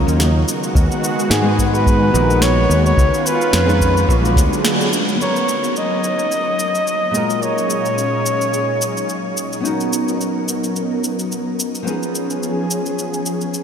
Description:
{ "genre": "sunset chillout", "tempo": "108 BPM", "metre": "4/4", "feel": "swing 55% on 16ths", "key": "unclear", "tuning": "A4 = 440 Hz", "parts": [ { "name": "nylon-string guitar", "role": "accompaniment", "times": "0.0-13.6 s", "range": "Bb2 to D5", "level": "-23 LUFS", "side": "equal", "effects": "auto-pan, analog delay, shimmer reverb" }, { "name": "lush unison pad", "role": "sustained chords", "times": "0.0-13.6 s", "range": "Bb2 to F5", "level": "-22 LUFS", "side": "equal", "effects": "chorus, shimmer reverb" }, { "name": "fingered electric bass", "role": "bass", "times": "0.1-4.5 s", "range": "Bb1 to Ab2", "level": "-16 LUFS", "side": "equal", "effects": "none" }, { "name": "electronic shaker and snare drum", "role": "drums", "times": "0.1-13.6 s", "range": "none", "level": "-24 LUFS", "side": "equal", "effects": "none" }, { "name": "electronic kick drum", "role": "drums", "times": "0.8-4.5 s", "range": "none", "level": "-17 LUFS", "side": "equal", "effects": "none" }, { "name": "mellow flugelhorn", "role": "melody", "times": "1.3-9.4 s", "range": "Ab4 to D#5", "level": "-21 LUFS", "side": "equal", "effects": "analog delay, shimmer reverb" } ], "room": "wet huge ambient reverb, RT60 7.5 s", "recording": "dreamy mix soaked in reverb", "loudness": "-15 LUFS", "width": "side -7 dB against mid", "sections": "0.0-5.2 A section; 5.2-13.6 B section", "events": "band accent 4.6; filter sweep on analog synth pad 5.2-13.6", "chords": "0.5 Abm7/Eb; 3.0 Db9; 4.1 Bb7b9b13; 5.2 Bmaj7; 7.1 Ebm11/Bb; 9.6 Bmaj7; 11.9 Db7" }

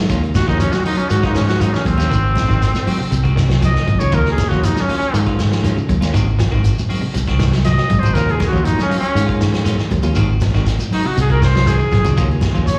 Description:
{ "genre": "afrobeat", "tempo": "119 BPM", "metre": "4/4", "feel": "straight", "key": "Eb dorian", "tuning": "A4 = 440 Hz", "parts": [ { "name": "electric guitar at the edge of break-up", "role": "arpeggios", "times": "0.0-12.8 s", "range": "C3 to Ab3", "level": "-26 LUFS", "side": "equal", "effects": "slapback echo" }, { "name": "fingered electric bass", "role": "bass", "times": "0.0-12.8 s", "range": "Ab1 to Ab2", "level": "-19 LUFS", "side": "equal", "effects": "none" }, { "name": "electric guitar at the edge of break-up", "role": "stabs", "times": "0.1-12.7 s", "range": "Eb3 to Gb4", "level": "-30 LUFS", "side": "equal", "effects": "slapback echo" }, { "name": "vintage drum kit", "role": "drums", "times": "0.1-12.8 s", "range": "hi-hat, kick drum, snare drum", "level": "-25 LUFS", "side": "equal", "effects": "none" }, { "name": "congas", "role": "percussion", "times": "0.1-12.8 s", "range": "none", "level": "-26 LUFS", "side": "equal", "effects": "slapback echo" }, { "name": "shekere", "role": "percussion", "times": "0.1-12.8 s", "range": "none", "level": "-27 LUFS", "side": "equal", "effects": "slapback echo" }, { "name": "clear trumpet", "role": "melody", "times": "0.4-12.8 s", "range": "C4 to Eb5", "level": "-23 LUFS", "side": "equal", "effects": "slapback echo, tape echo" } ], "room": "light reverb", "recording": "live gig heard through the venue's PA, recital hall reverb, studio ambience", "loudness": "-16 LUFS", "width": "mono", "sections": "0.1-12.8 A section", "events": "trumpet solo 0.1-12.8", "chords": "0.1 Ebm9; 2.1 Ab7; 4.1 Ebm9; 6.1 Ab7; 8.2 Ebm9; 10.2 Ab7; 12.2 Ebm9" }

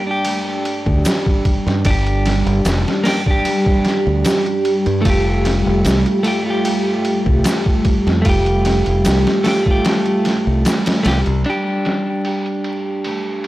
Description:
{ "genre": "trip hop", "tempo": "75 BPM", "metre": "4/4", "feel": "swing 53% on 16ths", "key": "unclear", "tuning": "A4 = 439 Hz", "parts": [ { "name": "clean electric guitar", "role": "accompaniment", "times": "0.0-13.5 s", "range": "A3 to G4", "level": "-20 LUFS", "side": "equal", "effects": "tremolo, tape echo" }, { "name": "dark analog pad", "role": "sustained chords", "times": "0.0-13.5 s", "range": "G3 to G4", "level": "-21 LUFS", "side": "equal", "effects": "chorus" }, { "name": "concert harp", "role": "arpeggios", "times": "0.0-13.5 s", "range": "G3 to G4", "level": "-24 LUFS", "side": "right 1 dB", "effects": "low-pass filter, tape echo" }, { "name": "trip hop sampler-style drum kit", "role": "drums", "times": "0.2-13.5 s", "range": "hi-hat, kick drum, ride cymbal, snare drum", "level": "-20 LUFS", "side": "equal", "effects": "overdrive, low-pass filter on cymbals, low-pass filter on snare, low-pass filter on hats, low-pass filter on kick, low-pass filter on room" }, { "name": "modern bright fingered electric bass", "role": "bass", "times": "0.9-11.4 s", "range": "F1 to G2", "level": "-17 LUFS", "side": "equal", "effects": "transformer saturation" }, { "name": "tube shaker", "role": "percussion", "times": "1.1-10.8 s", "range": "none", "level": "-33 LUFS", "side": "left 4 dB", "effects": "none" } ], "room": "little or no reverb", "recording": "dry, gritty hardware recording, vinyl crackle", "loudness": "-14 LUFS", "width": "side -16 dB against mid", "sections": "0.0-11.5 A section; 11.5-13.5 B section", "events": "filter sweep on clean electric guitar 0.0-11.5; kick drops out 9.9-11.5; filter sweep on harp 11.5-13.5", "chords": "0.0 G5; 5.1 Fadd9; 11.5 G5" }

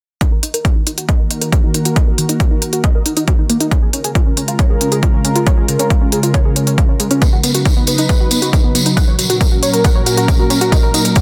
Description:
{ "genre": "uplifting trance", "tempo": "137 BPM", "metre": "4/4", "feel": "straight", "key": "Eb minor", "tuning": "A4 = 441 Hz", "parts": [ { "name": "lush unison pad", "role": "sustained chords", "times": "1.0-11.2 s", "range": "Bb2 to B4", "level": "-21 LUFS", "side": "equal", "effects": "chorus, sidechain pumping" }, { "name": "tight sequenced synth", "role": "arpeggios", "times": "0.2-11.2 s", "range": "Db3 to Gb5", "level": "-22 LUFS", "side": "equal", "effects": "chorus, cassette tape, sidechain pumping, delay" }, { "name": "electronic hi-hat", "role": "drums", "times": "0.2-11.2 s", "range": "none", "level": "-22 LUFS", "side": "equal", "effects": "none" }, { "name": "electronic kick drum", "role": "drums", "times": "0.2-11.2 s", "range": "none", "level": "-15 LUFS", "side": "equal", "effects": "none" }, { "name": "tambourine", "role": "percussion", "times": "7.2-11.2 s", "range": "none", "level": "-23 LUFS", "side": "equal", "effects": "none" } ], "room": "light reverb, digital ambience", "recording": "dense, heavily limited modern master", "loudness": "-14 LUFS", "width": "mono", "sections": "0.2-11.2 A section", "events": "filter sweep on synth arpeggio sound 0.2-11.2; filter sweep on analog synth pad 0.2-11.2", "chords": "0.2 Ebm; 3.7 Db6; 7.2 Badd9; 9.0 Gb" }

